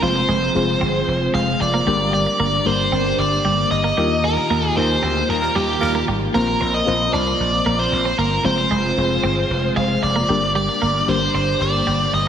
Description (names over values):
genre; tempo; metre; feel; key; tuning
pop; 114 BPM; 4/4; straight; unclear; A4 = 439 Hz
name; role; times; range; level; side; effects
biting lead guitar; melody; 0.0-12.3 s; G4 to F5; -20 LUFS; equal; overdrive
FM electric piano with tremolo; accompaniment; 0.0-12.3 s; G3 to C5; -24 LUFS; left 3 dB; none
string machine, full ensemble; sustained chords; 0.0-12.3 s; Eb3 to G4; -26 LUFS; equal; ensemble chorus
twelve-string electric guitar; riff; 0.0-12.2 s; F3 to Eb4; -26 LUFS; right 3 dB; wide subtle chorus, tape echo
vintage slap bass; bass; 0.0-12.3 s; F1 to Eb2; -23 LUFS; equal; none
warm horn section; stabs; 5.4-6.0 s; G3 to Bb4; -29 LUFS; right 3 dB; tape echo
room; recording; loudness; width
wet lush hall reverb, RT60 2.9 s; dreamy mix soaked in reverb; -16 LUFS; side -8 dB against mid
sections
0.0-12.3 A section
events
band accent 4.2-6.3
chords
0.0 Fm; 1.9 Gm; 4.0 Ebadd9; 6.3 Bbsus2; 8.4 Fm; 10.3 Gm